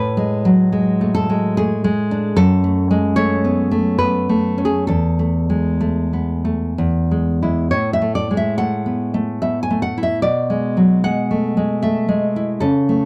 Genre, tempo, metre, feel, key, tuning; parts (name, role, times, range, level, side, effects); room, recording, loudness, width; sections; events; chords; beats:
romantic piece for solo classical guitar; 62-77 BPM; 3/4; rubato; A major; A4 = 440 Hz
nylon-string guitar; solo; 0.0-13.1 s; E2 to G#5; -18 LUFS; equal
light reverb; dry, close 1970s-style studio recording; -18 LUFS; mono
0.0-13.1 A section
0.0 F#madd9/A; 2.4 F#m; 4.9 A5/E; 6.8 E; 7.7 A5; 10.2 E7/B
0.73 1.56 | 2.37 3.18 4.00 | 4.89 5.82 6.78 | 7.73 8.59 9.41 | 10.23 11.05 11.85 | 12.64